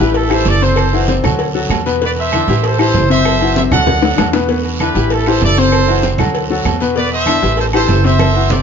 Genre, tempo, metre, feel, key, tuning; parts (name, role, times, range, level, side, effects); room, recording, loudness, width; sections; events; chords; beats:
latin, salsa; 194 BPM; 4/4; straight; A4 = 440 Hz
brilliant trumpet section; melody; 0.0-8.6 s; E4 to F#5; -17 LUFS; right 3 dB
clear concert grand piano; accompaniment; 0.0-8.6 s; B2 to C5; -16 LUFS; left 5 dB
upright bass; bass; 0.0-8.6 s; F#1 to E2; -17 LUFS; right 1 dB
congas; percussion; 0.0-8.6 s; -24 LUFS; right 2 dB
guiro; percussion; 0.0-8.6 s; -27 LUFS; right 8 dB
agogo bells and timbales; percussion; 0.1-8.6 s; -23 LUFS; right 9 dB
cowbell and bongos; percussion; 0.1-8.6 s; -22 LUFS; left 5 dB
claves; percussion; 0.3-8.4 s; -30 LUFS; left 3 dB
moderate plate reverb, RT60 2.7 s; nothing above 7.5 kHz; -11 LUFS; side -7 dB against mid
0.0-8.6 A section
drum fill 3.9-4.5, 8.2-8.6
0.2 Am7; 0.8 F#m7b5; 1.4 Dadd9; 2.0 Em7; 2.6 Am7; 3.2 F#m7b5; 3.9 Dadd9; 4.5 Em7; 5.1 Am7; 5.7 F#m7b5; 6.3 Dadd9; 7.0 Em7; 7.6 Am7
0.15 0.46 | 0.77 1.08 1.39 1.70 | 2.01 2.32 2.63 2.94 | 3.25 3.56 3.87 4.18 | 4.49 4.80 5.11 5.42 | 5.72 6.04 6.34 6.65 | 6.96 7.27 7.58 7.89 | 8.20 8.51